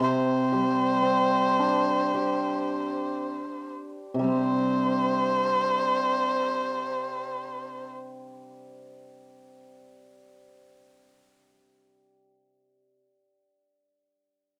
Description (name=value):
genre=chinese traditional, Chinese chamber ensemble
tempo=free time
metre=none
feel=none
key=unclear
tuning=A4 = 437 Hz
part: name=dark erhu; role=melody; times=0.0-7.9 s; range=C5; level=-29 LUFS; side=equal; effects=none
part: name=hammered dulcimer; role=accompaniment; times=0.0-13.0 s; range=C3 to G4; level=-30 LUFS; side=equal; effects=none
room=moderate recital hall reverb, RT60 1.4 s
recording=dark, warm production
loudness=-26 LUFS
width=mono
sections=0.0-4.3 A section; 4.3-8.4 B section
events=slowing down 0.0-4.3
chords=none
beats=free time